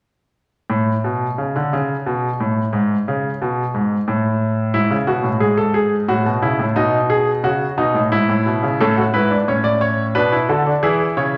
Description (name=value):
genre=classical, baroque-style 3-part fugue for grand piano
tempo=89 BPM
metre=3/4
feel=straight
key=unclear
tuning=A4 = 440 Hz
part: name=clear grand piano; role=solo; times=0.7-11.4 s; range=G#2 to D5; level=-18 LUFS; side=equal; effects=none
room=wet recital hall reverb, RT60 1.4 s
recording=none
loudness=-18 LUFS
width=mono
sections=0.7-11.4 A section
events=none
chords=0.7 N.C.; 4.7 E/G#; 6.1 F#m7/A; 6.8 B7; 8.1 E/G#; 8.8 A; 10.2 Bm7; 10.8 E